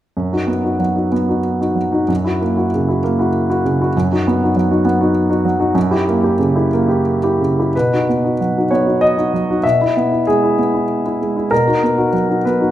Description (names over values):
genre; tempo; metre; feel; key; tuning
classical, romantic character piece for solo piano; 83-100 BPM; 3/4; rubato; B major; A4 = 440 Hz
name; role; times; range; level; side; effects
warm grand piano; solo; 0.2-12.7 s; F#2 to E5; -14 LUFS; equal; none
room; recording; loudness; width
moderate recital hall reverb, RT60 1.8 s; minimal, uncompressed stereo recording; -14 LUFS; side -12 dB against mid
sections
0.2-7.7 A section; 7.7-12.7 B section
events
none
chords
0.2 B/F#; 2.1 F#7; 3.9 B/F#; 5.8 F#7b9 (rootless); 7.7 B; 9.6 E/B; 11.5 B